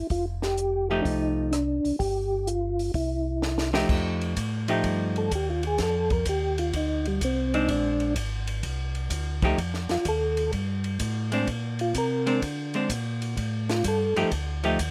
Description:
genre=soul jazz organ trio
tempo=127 BPM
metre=4/4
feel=swing 68% on 8ths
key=F mixolydian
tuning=A4 = 438 Hz
part: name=percussive tonewheel organ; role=melody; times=0.0-14.3 s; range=G3 to Bb4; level=-29 LUFS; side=equal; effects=slow rotary speaker, chorus vibrato, plate reverb
part: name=mellow tonewheel organ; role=bass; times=0.0-14.9 s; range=F1 to D3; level=-32 LUFS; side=equal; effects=slow rotary speaker
part: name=compact cocktail drum kit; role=drums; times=0.1-14.9 s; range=crash cymbal, hi-hat, kick drum, ride cymbal, rim click, snare drum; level=-34 LUFS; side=equal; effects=none
part: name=archtop guitar, miked and amplified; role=accompaniment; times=0.9-14.8 s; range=F3 to G4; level=-28 LUFS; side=equal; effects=none
room=light reverb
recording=none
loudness=-27 LUFS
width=mono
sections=0.0-3.9 A section; 3.9-14.9 B section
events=drum fill 3.4-3.9; tonewheel organ solo 3.9-14.9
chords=0.1 F9; 2.0 Fsus2/G; 2.9 C; 3.9 F9; 7.7 Bb9; 9.6 F9; 11.5 Bb9; 13.4 F9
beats=| 0.10 0.57 1.05 1.52 | 2.00 2.47 2.95 3.42 | 3.90 4.37 4.85 5.32 | 5.79 6.27 6.74 7.22 | 7.69 8.16 8.64 9.11 | 9.59 10.06 10.53 11.01 | 11.48 11.95 12.43 12.90 | 13.37 13.85 14.32 14.79

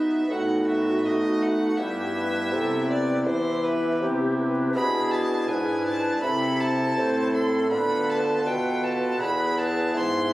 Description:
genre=classical, baroque-style sonata movement with continuo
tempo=81 BPM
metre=4/4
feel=straight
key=E minor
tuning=A4 = 440 Hz
part: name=clear violin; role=second line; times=0.0-10.3 s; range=B4 to C6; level=-29 LUFS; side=right 1 dB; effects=none
part: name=pipe organ, foundations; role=accompaniment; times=0.0-10.3 s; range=E2 to A4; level=-25 LUFS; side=equal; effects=none
part: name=mellow bassoon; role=bass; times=0.0-10.3 s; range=E2 to B3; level=-28 LUFS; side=right 1 dB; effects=none
part: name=mellow silver concert flute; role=melody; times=0.3-10.3 s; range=F#4 to E5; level=-31 LUFS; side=left 2 dB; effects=none
room=wet recital hall reverb, RT60 1.6 s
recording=recorded on a phone in the room, club reverb, vinyl crackle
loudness=-22 LUFS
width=side -16 dB against mid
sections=0.0-10.3 A section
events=none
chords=0.3 B7/A; 1.8 Em/G; 4.8 E7/B; 6.2 Am/C; 7.7 Bm7b5/D; 9.2 E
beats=0.30 1.04 | 1.78 2.52 3.27 4.01 | 4.75 5.49 6.23 6.97 | 7.71 8.45 9.20 9.95

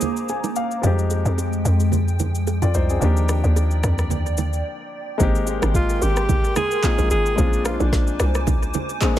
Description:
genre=amapiano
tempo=110 BPM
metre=4/4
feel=swing 55% on 16ths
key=unclear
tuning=A4 = 440 Hz
part: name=breathy alto saxophone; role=melody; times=0.0-0.6, 5.8-8.3 s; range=D4 to Ab4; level=-25 LUFS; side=right 1 dB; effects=low-pass filter, analog delay
part: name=warm baby grand piano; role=accompaniment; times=0.0-9.2 s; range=F3 to Ab5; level=-27 LUFS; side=left 4 dB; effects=low-pass filter, analog delay
part: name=hollow soft pad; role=sustained chords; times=0.0-9.2 s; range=Ab3 to D6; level=-30 LUFS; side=right 1 dB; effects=ensemble chorus, sidechain pumping, low-pass filter
part: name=afro-pop drum kit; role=drums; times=0.0-9.2 s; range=handclaps, kick drum, rim click, shaker, snare drum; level=-23 LUFS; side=equal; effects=analog delay
part: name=bongos and congas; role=percussion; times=0.0-9.2 s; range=none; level=-29 LUFS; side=right 7 dB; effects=none
part: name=hollow log drum bass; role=bass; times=0.8-8.7 s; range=Ab1 to F2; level=-21 LUFS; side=equal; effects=none
part: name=sub bass with octave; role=bass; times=0.8-4.6 s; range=Eb2 to F2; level=-22 LUFS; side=equal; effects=none
room=small room ambience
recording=echo-heavy mix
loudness=-18 LUFS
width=side -12 dB against mid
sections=0.0-5.2 A section; 5.2-9.2 B section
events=filter sweep 0.0-5.2; grand piano fill 0.0-0.8; break 4.7-5.2; drop 5.2-9.2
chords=0.0 Bb9; 0.8 Fm9; 3.0 Ebmaj7; 5.2 Abmaj9; 7.4 Bb9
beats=0.29 | 0.83 1.38 1.93 2.47 | 3.02 3.56 4.11 4.65 | 5.20 5.74 6.29 6.83 | 7.38 7.93 8.47 9.02

